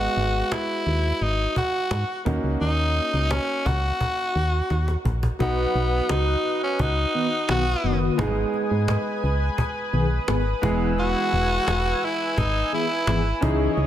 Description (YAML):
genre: 1980s-style pop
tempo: 86 BPM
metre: 4/4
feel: straight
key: G# minor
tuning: A4 = 440 Hz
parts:
  - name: raspy tenor saxophone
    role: melody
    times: 0.0-13.4 s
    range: B3 to F#4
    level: -25 LUFS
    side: equal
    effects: none
  - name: clear concert grand piano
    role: accompaniment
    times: 0.0-13.9 s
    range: E3 to D#5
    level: -29 LUFS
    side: right 2 dB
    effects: none
  - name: solid FM bass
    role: bass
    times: 0.0-13.9 s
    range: E1 to G#2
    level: -24 LUFS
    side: equal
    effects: none
  - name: cajon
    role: drums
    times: 0.2-13.9 s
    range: none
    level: -29 LUFS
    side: equal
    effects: none
  - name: lush unison pad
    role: sustained chords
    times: 5.4-13.9 s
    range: B4 to E6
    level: -31 LUFS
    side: equal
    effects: chorus
  - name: mellow synth brass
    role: stabs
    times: 7.1-13.7 s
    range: D#3 to G#4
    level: -27 LUFS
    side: left 2 dB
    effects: chorus
room: light reverb, small room reverb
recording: none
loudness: -21 LUFS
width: side -11 dB against mid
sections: 0.0-5.4 A section; 5.4-13.9 B section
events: drum fill 4.7-5.4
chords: 0.0 G#m7; 2.3 D#m7; 5.4 B; 8.2 G#m; 10.6 E